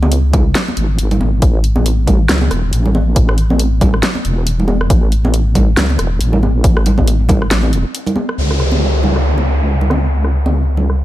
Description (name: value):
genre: deep dubstep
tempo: 138 BPM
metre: 4/4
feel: swing 58% on 16ths, half-time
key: unclear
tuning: A4 = 440 Hz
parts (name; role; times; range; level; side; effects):
- wobble bass; bass; 0.0-11.0 s; E1 to C#2; -14 LUFS; equal; chorus
- congas; percussion; 0.0-10.9 s; none; -20 LUFS; right 2 dB; dub echo
- deep house drum kit; drums; 0.1-11.0 s; hi-hat, rim click, snare drum; -19 LUFS; equal; low-pass filter on hats, studio ambience, low-pass filter on snare
- electronic kick drum; drums; 0.3-7.4 s; none; -14 LUFS; equal; studio ambience
- downlifter; sound effects; 8.4-11.0 s; none; -20 LUFS; equal; none
room: little or no reverb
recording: none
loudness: -12 LUFS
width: side -14 dB against mid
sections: 0.0-8.4 A section; 8.4-11.0 B section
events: break 7.9-8.4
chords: none